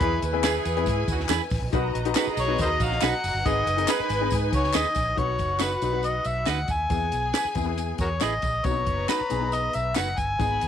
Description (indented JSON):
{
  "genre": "uptempo 1960s-style soul",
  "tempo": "138 BPM",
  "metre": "4/4",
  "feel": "straight",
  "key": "B major",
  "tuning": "A4 = 441 Hz",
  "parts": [
    { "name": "overdriven harmonica", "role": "melody", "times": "0.0-10.7 s", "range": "F#4 to G#5", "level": "-27 LUFS", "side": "left 1 dB", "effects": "tape echo" },
    { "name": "bright saxophone section", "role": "second line", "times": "0.0-4.7 s", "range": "D#3 to B4", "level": "-33 LUFS", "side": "right 16 dB", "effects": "none" },
    { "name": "warm studio string section", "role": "second line", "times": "0.0-10.7 s", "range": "D#4 to B5", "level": "-33 LUFS", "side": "left 1 dB", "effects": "none" },
    { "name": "warm upright piano", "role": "accompaniment", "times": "0.0-10.7 s", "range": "B3 to B4", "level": "-31 LUFS", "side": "left 12 dB", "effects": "none" },
    { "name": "vintage muted fingered electric bass", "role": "bass", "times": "0.0-10.7 s", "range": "F#1 to G#2", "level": "-29 LUFS", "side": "right 2 dB", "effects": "none" },
    { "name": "compact cocktail drum kit", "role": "drums", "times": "0.0-10.7 s", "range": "hi-hat, kick drum, snare drum", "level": "-30 LUFS", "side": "left 2 dB", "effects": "none" },
    { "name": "tambourine and handclaps", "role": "percussion", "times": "0.2-10.7 s", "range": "none", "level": "-35 LUFS", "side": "left 1 dB", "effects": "none" },
    { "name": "clean electric guitar", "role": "stabs", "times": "0.4-10.1 s", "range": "D#4 to B4", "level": "-28 LUFS", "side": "right 15 dB", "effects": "lush chorus" }
  ],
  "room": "light reverb, studio reverb",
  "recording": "1960s-style stereo with parts hard left and right",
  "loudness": "-22 LUFS",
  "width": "side -9 dB against mid",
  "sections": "0.0-5.2 A section; 5.2-10.7 B section",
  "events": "none",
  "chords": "0.0 E; 1.7 B; 3.5 G#m; 5.2 B; 6.9 E; 8.7 B",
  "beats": "| 0.01 0.44 0.87 1.30 | 1.73 2.16 2.59 3.02 | 3.45 3.88 4.32 4.75 | 5.18 5.61 6.05 6.48 | 6.92 7.35 7.79 8.22 | 8.66 9.09 9.53 9.97 | 10.40"
}